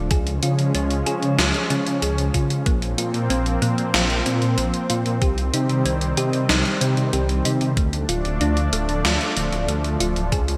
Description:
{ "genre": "synthwave", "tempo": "94 BPM", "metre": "4/4", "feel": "straight", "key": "unclear", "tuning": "A4 = 440 Hz", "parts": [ { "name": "lush unison pad", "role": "sustained chords", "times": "0.0-10.6 s", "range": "Eb3 to D4", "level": "-28 LUFS", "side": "equal", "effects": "chorus, sidechain pumping" }, { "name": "dark detuned saw bass", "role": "bass", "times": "0.0-10.6 s", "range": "D1 to Db3", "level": "-25 LUFS", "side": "equal", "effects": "tube saturation, sidechain pumping" }, { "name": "thumb-piano-like synth pluck", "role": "arpeggios", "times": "0.1-10.6 s", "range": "A3 to Ab4", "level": "-30 LUFS", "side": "equal", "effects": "chorus, delay" }, { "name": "electronic kick drum", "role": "drums", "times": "0.1-10.4 s", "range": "none", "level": "-24 LUFS", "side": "equal", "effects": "none" }, { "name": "gated 80s digital drum machine", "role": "drums", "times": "0.1-10.6 s", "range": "hi-hat, snare drum", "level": "-26 LUFS", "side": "equal", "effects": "gated reverb, gated reverb snare" } ], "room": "moderate lush hall reverb, RT60 2.5 s", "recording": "bright 1980s-style digital production", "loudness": "-21 LUFS", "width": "mono", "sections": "0.0-10.6 A section", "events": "none", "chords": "0.1 Db; 2.7 Bbsus2; 5.2 Cm; 7.8 Dm", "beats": "| 0.11 0.75 1.39 2.02 | 2.66 3.30 3.94 4.58 | 5.22 5.86 6.49 7.13 | 7.77 8.41 9.05 9.69 | 10.32" }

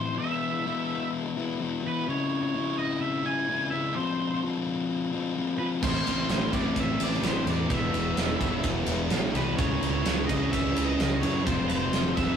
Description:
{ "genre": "quiet-loud alternative rock", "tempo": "128 BPM", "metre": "4/4", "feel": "straight", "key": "unclear", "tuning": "A4 = 440 Hz", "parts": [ { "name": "octave-fuzz lead guitar", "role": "melody", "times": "0.0-12.4 s", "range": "B4 to G#5", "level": "-32 LUFS", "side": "right 2 dB", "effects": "distortion" }, { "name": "thick fuzz guitar", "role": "riff", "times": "0.0-12.4 s", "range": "A2 to F4", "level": "-29 LUFS", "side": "left 4 dB", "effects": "distortion" }, { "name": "raw garage guitar", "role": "riff", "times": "5.8-12.4 s", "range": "E2 to C#4", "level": "-34 LUFS", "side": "right 4 dB", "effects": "overdrive" }, { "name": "sludgy distorted guitar", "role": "riff", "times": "5.8-12.4 s", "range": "A2 to F4", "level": "-37 LUFS", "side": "right 7 dB", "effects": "none" }, { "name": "fuzz fingered electric bass", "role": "bass", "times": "5.8-12.4 s", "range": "E1 to F#2", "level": "-32 LUFS", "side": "right 2 dB", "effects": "overdrive" }, { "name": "big rock drum kit", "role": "drums", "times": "5.8-12.3 s", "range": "crash cymbal, kick drum, ride cymbal, snare drum", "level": "-28 LUFS", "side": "right 2 dB", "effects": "none" } ], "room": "wet stone room reverb, RT60 0.9 s", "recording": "rough rehearsal-room recording", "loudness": "-25 LUFS", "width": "side -8 dB against mid", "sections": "0.0-12.4 A section", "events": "none", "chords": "0.2 E; 2.1 C#m; 3.9 Fm; 5.8 Am; 7.7 E; 9.6 C#m; 11.5 Fm", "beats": "| 0.18 0.66 1.12 1.59 | 2.06 2.54 3.00 3.48 | 3.94 4.42 4.89 5.36 | 5.83 6.30 6.77 7.24 | 7.71 8.18 8.65 9.12 | 9.59 10.06 10.53 11.00 | 11.47 11.94" }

